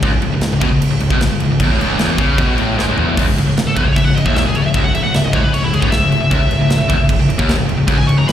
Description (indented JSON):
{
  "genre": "heavy metal",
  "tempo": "152 BPM",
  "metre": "4/4",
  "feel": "straight",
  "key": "C# minor",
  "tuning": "A4 = 441 Hz",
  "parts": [
    { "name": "distorted electric guitar", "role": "riff", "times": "0.0-8.3 s", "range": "C#2 to C#3", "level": "-19 LUFS", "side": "left 8 dB", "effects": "overdrive, slapback echo" },
    { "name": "distorted electric guitar", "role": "riff", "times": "0.0-8.3 s", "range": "C#2 to C#3", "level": "-20 LUFS", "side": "right 7 dB", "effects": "overdrive, slapback echo" },
    { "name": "fuzz guitar", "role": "riff", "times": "0.0-8.3 s", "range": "C#2 to C#3", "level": "-23 LUFS", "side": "equal", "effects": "none" },
    { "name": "fuzz picked electric bass", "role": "bass", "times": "0.0-8.3 s", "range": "C#1 to C#2", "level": "-20 LUFS", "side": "equal", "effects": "overdrive" },
    { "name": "tight metal drum kit", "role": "drums", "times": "0.0-8.3 s", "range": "crash cymbal, kick drum, snare drum, toms", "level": "-18 LUFS", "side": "equal", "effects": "none" },
    { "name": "smooth overdriven lead guitar", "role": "melody", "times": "3.7-8.3 s", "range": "E4 to C#6", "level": "-19 LUFS", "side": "left 2 dB", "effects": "slapback echo, digital delay" }
  ],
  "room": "little or no reverb",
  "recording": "live gig heard through the venue's PA, recital hall reverb",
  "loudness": "-12 LUFS",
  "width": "side -10 dB against mid",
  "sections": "0.0-3.2 A section; 3.2-8.3 B section",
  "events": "drum fill 2.8-3.2; lead electric guitar solo 3.2-8.3",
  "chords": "0.0 C#m"
}